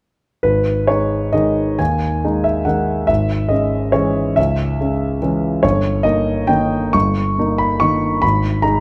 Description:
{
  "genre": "classical, piano waltz",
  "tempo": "124-152 BPM",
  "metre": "3/4",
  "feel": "rubato",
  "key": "G# minor",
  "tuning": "A4 = 440 Hz",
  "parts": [
    { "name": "warm concert grand piano", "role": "solo", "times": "0.4-8.8 s", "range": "G1 to C#6", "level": "-17 LUFS", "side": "equal", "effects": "none" }
  ],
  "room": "light reverb",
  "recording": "close, detailed microphones",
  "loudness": "-17 LUFS",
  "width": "mono",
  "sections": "0.4-8.8 A section",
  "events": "none",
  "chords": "0.4 G#m; 3.1 C#m/G#; 5.6 D#7/G; 8.2 G#m"
}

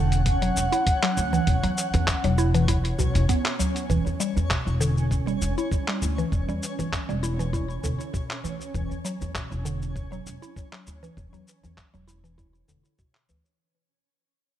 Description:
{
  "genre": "organic downtempo",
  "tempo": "99 BPM",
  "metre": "4/4",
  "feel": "swing 54% on 16ths",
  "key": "unclear",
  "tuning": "A4 = 441 Hz",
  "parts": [
    { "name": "breathy flute-like synth lead", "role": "melody", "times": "0.0-3.3 s", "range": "F#5", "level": "-28 LUFS", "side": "equal", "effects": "tremolo, lush chorus, digital delay, shimmer reverb" },
    { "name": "mallet-like synth pluck", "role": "arpeggios", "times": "0.0-13.4 s", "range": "B2 to E4", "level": "-29 LUFS", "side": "right 1 dB", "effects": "chorus, phaser, digital delay" },
    { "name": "upright bass", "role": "bass", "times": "0.0-13.4 s", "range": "E1 to E2", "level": "-26 LUFS", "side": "equal", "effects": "sidechain pumping" },
    { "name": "twinkling granular texture", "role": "texture", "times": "0.0-13.6 s", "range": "C#4 to C#5", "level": "-36 LUFS", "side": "right 2 dB", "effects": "built-in reverb, shimmer reverb" },
    { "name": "dusty soul sampler-style drum kit", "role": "drums", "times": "0.1-13.6 s", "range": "cabasa, handclaps, hi-hat", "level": "-30 LUFS", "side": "left 1 dB", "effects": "small room reverb" },
    { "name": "electronic kick drum", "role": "drums", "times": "0.3-13.1 s", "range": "none", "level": "-26 LUFS", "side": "equal", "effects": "small room reverb" },
    { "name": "udu", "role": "percussion", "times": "1.2-13.4 s", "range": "none", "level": "-31 LUFS", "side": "equal", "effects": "none" }
  ],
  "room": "light reverb",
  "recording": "none",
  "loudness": "-23 LUFS",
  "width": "side -11 dB against mid",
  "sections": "0.0-3.9 A section; 3.9-13.6 B section",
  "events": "fade-out 3.9-13.6",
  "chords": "0.0 Dmaj7/E; 3.9 Em7; 8.7 Dmaj7/E"
}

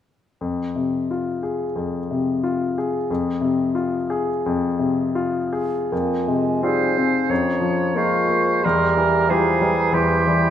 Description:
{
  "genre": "classical",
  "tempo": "87 BPM",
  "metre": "4/4",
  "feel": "uneven beats, rubato",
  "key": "F minor",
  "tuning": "A4 = 442 Hz",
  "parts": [
    { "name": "clear concert grand piano", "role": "melody", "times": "0.4-10.5 s", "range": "E2 to C5", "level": "-20 LUFS", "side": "left 3 dB", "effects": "none" },
    { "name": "dark clarinet", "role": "second line", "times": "5.9-10.5 s", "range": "Db4 to G4", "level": "-29 LUFS", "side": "equal", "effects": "none" },
    { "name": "mellow hollow concert flute", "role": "second line", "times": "5.9-10.5 s", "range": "Ab5 to Db6", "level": "-26 LUFS", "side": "equal", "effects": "none" },
    { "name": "mellow bassoon", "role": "accompaniment", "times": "5.9-10.5 s", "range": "E3 to Bb3", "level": "-25 LUFS", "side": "right 4 dB", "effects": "none" },
    { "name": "clear oboe", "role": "second line", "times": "6.6-10.5 s", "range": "G4 to Db5", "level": "-21 LUFS", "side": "right 5 dB", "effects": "none" }
  ],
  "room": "moderate scoring stage reverb, RT60 2.1 s",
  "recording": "none",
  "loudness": "-18 LUFS",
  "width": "side -10 dB against mid",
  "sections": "0.4-5.9 A section; 5.9-10.5 B section",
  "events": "none",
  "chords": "0.4 Fm; 7.3 Bbm/F; 8.6 C7/E"
}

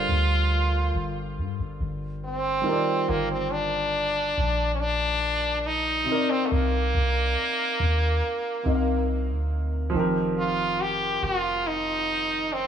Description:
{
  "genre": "R&B",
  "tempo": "70 BPM",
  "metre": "4/4",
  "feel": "straight",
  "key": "unclear",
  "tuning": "A4 = 442 Hz",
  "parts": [
    { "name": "stopped French horn", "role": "melody", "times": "0.0-12.7 s", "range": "A3 to G4", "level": "-25 LUFS", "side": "right 1 dB", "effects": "tape echo" },
    { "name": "warm concert grand piano", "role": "accompaniment", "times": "0.0-12.7 s", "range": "C3 to F5", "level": "-30 LUFS", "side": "equal", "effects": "none" },
    { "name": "soft 808-style bass", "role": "bass", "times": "0.0-12.7 s", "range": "F1 to G2", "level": "-27 LUFS", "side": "equal", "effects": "none" }
  ],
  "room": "light reverb, small room ambience",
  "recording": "none",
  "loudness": "-23 LUFS",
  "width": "side -8 dB against mid",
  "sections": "0.0-9.9 A section; 9.9-12.7 B section",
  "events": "none",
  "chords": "0.0 Gm11; 2.7 Ebmaj9/G; 6.1 Cm7; 9.9 F7sus4"
}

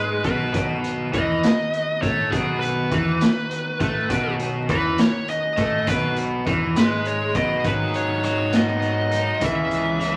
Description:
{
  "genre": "indie rock",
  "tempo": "68 BPM (dotted quarters)",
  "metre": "6/8",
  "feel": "straight",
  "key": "B major",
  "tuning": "A4 = 440 Hz",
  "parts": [
    { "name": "fuzz lead guitar", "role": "melody", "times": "0.0-10.2 s", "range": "G#4 to E5", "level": "-28 LUFS", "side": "equal", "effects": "distortion" },
    { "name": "crunchy overdriven guitar", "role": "riff", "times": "0.0-10.2 s", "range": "G#2 to B4", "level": "-33 LUFS", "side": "equal", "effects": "none" },
    { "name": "overdriven semi-hollow guitar", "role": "riff", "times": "0.0-10.2 s", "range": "B2 to D#4", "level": "-27 LUFS", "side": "equal", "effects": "none" },
    { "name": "fuzz picked electric bass", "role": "bass", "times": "0.0-10.2 s", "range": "G#1 to A2", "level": "-34 LUFS", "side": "equal", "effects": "overdrive" },
    { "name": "raw garage drum kit", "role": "drums", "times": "0.2-10.1 s", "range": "hi-hat, kick drum, snare drum", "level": "-27 LUFS", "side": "equal", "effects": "none" },
    { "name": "hollow soft pad", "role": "sustained chords", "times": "0.5-7.6 s", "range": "D#3 to F#4", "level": "-38 LUFS", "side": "equal", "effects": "none" }
  ],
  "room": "wet large studio reverb, RT60 1.3 s",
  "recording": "vinyl crackle",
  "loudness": "-22 LUFS",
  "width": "mono",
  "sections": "0.0-7.6 A section; 7.6-10.2 B section",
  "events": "lead electric guitar solo 0.0-7.6",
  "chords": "0.0 B; 7.6 G#m7; 9.4 C#m7"
}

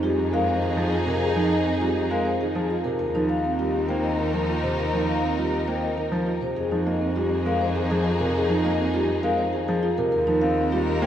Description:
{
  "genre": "classical, minimalist pattern music",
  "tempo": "101 BPM",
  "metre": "3/4",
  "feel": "straight",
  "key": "F minor",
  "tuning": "A4 = 441 Hz",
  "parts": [
    { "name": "vibraphone with soft mallets", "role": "melody", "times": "0.0-11.1 s", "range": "G4 to G5", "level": "-27 LUFS", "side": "left 4 dB", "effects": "none" },
    { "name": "warm grand piano", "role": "accompaniment", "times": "0.0-11.1 s", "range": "C3 to C4", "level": "-29 LUFS", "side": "equal", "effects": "none" },
    { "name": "warm symphonic violin section", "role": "sustained chords", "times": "0.0-11.1 s", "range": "Eb4 to Bb4", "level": "-31 LUFS", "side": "left 2 dB", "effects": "none" },
    { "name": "marimba with soft mallets", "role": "arpeggios", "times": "0.0-11.1 s", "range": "C4 to C5", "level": "-26 LUFS", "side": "right 4 dB", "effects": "none" },
    { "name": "warm cello", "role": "bass", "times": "0.0-11.1 s", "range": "Eb2 to F2", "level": "-29 LUFS", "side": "equal", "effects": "none" }
  ],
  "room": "wet huge ambient reverb, RT60 7.6 s",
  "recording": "in a vast, echoing space",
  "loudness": "-21 LUFS",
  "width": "side -10 dB against mid",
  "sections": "0.0-11.1 A section",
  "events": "none",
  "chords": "0.0 Fm9; 3.0 Cm7/Eb; 6.6 Fm7; 10.1 Cm7/Eb"
}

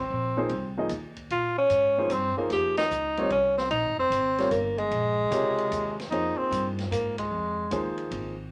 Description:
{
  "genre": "modal jazz",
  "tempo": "150 BPM",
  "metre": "3/4",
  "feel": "swing 67% on 8ths",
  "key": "Bb dorian",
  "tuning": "A4 = 440 Hz",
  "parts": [
    { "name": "breathy tenor saxophone", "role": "melody", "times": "0.0-7.9 s", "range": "Ab3 to G4", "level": "-28 LUFS", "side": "equal", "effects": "none" },
    { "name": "upright bass", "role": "bass", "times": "0.0-8.5 s", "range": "F1 to Bb2", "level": "-37 LUFS", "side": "equal", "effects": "none" },
    { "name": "warm baby grand piano", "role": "accompaniment", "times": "0.4-8.3 s", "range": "C3 to Eb5", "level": "-33 LUFS", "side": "equal", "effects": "none" },
    { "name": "open jazz drum kit", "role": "drums", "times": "0.5-8.2 s", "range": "hi-hat, kick drum, ride cymbal, snare drum", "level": "-44 LUFS", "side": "equal", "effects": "none" }
  ],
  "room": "wet club reverb, RT60 0.7 s",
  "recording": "none",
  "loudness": "-27 LUFS",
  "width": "mono",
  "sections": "0.0-8.5 A section",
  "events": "band accent 2.7, 7.1",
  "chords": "0.0 Bb13sus4"
}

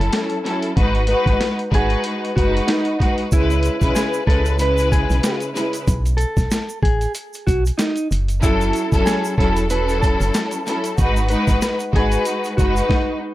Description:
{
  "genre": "hip hop, boom-bap hip-hop",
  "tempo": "94 BPM",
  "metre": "4/4",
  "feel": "swing 57% on 16ths",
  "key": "unclear",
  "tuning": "A4 = 442 Hz",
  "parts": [
    { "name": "mellow electric guitar", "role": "melody", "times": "0.0-13.2 s", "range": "D#4 to B4", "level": "-24 LUFS", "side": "right 1 dB", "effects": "wide subtle chorus, high-pass filter, low-pass filter, tape echo" },
    { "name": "warm studio string section", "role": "accompaniment", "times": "0.0-13.2 s", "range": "C#3 to B4", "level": "-20 LUFS", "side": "left 1 dB", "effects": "cassette tape, high-pass filter, low-pass filter" },
    { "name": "organ-like FM bass", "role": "bass", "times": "0.0-12.8 s", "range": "E1 to C#2", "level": "-20 LUFS", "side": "equal", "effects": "none" },
    { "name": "boom bap sampler-style drum kit", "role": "drums", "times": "0.0-13.1 s", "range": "hi-hat, kick drum, snare drum", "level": "-20 LUFS", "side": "equal", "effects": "none" },
    { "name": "egg shaker", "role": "percussion", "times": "3.3-12.9 s", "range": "none", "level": "-35 LUFS", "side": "right 4 dB", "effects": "none" }
  ],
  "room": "little or no reverb",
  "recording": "dry, gritty hardware recording",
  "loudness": "-16 LUFS",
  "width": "side -16 dB against mid",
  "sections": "0.0-13.3 A section",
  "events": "break 5.9-8.4",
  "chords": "0.0 F#m7; 0.8 G#m7; 3.3 C#m7; 5.9 B7(no3); 8.1 F#m7; 11.0 G#m7"
}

